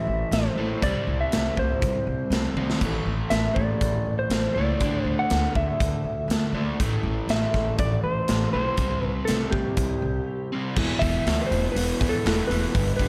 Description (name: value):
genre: classic rock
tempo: 121 BPM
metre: 4/4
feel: straight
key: unclear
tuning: A4 = 440 Hz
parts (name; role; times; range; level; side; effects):
- electric slide guitar; melody; 0.0-13.1 s; G4 to F#5; -30 LUFS; equal; slapback echo
- overdriven semi-hollow guitar; riff; 0.0-13.1 s; E2 to D4; -31 LUFS; equal; slapback echo
- upright bass; bass; 0.1-13.1 s; E1 to E2; -30 LUFS; equal; none
- big rock drum kit; drums; 0.3-13.1 s; crash cymbal, hi-hat, kick drum, snare drum, splash cymbal, toms; -29 LUFS; equal; none
room: moderate lush hall reverb, RT60 1.7 s, small room ambience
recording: big arena sound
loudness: -24 LUFS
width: mono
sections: 0.0-10.8 A section; 10.8-13.1 B section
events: drum fill 2.6; break 10.3-10.8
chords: 0.0 Am; 0.8 C5; 2.8 A5; 4.8 Dsus2; 6.8 Am; 8.8 C5; 10.8 E5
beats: 0.32 | 0.81 1.31 1.81 2.31 | 2.81 3.31 3.81 4.30 | 4.80 5.30 5.80 6.30 | 6.79 7.29 7.79 8.28 | 8.78 9.28 9.77 10.27 | 10.76 11.26 11.75 12.25 | 12.74